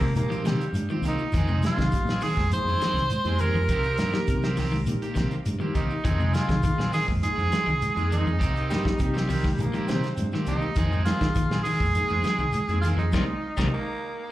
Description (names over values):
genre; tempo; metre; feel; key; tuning
afrobeat; 102 BPM; 4/4; straight; F minor; A4 = 441 Hz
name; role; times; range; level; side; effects
raspy baritone saxophone; second line; 0.0-0.9, 8.7-14.3 s; G3 to C4; -34 LUFS; right 1 dB; slapback echo
electric guitar at the edge of break-up; arpeggios; 0.0-13.7 s; Ab2 to G3; -30 LUFS; left 2 dB; none
electric guitar at the edge of break-up; stabs; 0.0-13.7 s; Eb3 to Ab4; -34 LUFS; right 4 dB; lush chorus
fingered electric bass; bass; 0.0-13.7 s; C2 to Eb3; -27 LUFS; equal; none
warm soul drum kit; drums; 0.0-13.7 s; hi-hat, kick drum, snare drum; -29 LUFS; equal; none
congas; percussion; 0.0-13.7 s; none; -33 LUFS; right 1 dB; none
shekere; percussion; 0.0-13.7 s; none; -34 LUFS; equal; none
mellow tine electric piano; accompaniment; 0.1-13.7 s; F3 to Ab4; -34 LUFS; left 1 dB; medium stereo tremolo, slapback echo
breathy tenor saxophone; melody; 1.1-14.1 s; Eb4 to C5; -29 LUFS; right 1 dB; slapback echo, tape echo
room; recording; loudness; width
light reverb, small room ambience; live gig heard through the venue's PA, club reverb; -22 LUFS; side -15 dB against mid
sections
0.0-14.3 A section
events
band accent 13.1-14.3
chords
0.0 Cm7; 1.3 Fm7; 3.7 Cm7; 6.0 Fm7; 8.4 Cm7; 10.8 Fm7; 13.1 Cm7